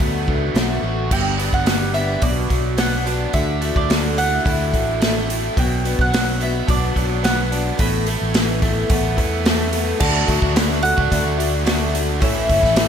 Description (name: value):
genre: folk rock and heartland rock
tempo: 108 BPM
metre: 4/4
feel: straight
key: D major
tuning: A4 = 440 Hz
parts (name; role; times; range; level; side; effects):
- mandolin; melody; 0.0-12.9 s; D5 to B5; -24 LUFS; right 1 dB; slapback echo
- picked acoustic archtop guitar; accompaniment; 0.0-12.9 s; G2 to A4; -26 LUFS; left 5 dB; slapback echo
- overdriven electric guitar; riff; 0.0-12.9 s; G2 to F#4; -24 LUFS; right 2 dB; slapback echo
- fingered electric bass; bass; 0.0-12.9 s; F#1 to E2; -23 LUFS; equal; none
- natural country drum kit; drums; 0.0-12.9 s; crash cymbal, hi-hat, kick drum, snare drum; -21 LUFS; equal; none
- dark upright piano; accompaniment; 10.0-12.9 s; E4 to D5; -30 LUFS; right 5 dB; slapback echo
room: moderate lush hall reverb, RT60 2.4 s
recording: big arena sound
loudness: -16 LUFS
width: side -8 dB against mid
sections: 0.0-1.1 A section; 1.1-10.0 B section; 10.0-12.9 C section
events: none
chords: 0.0 D6; 1.1 G; 2.2 Bm; 3.3 Dadd9; 5.6 Bm; 7.8 Asus2; 10.0 D; 12.2 A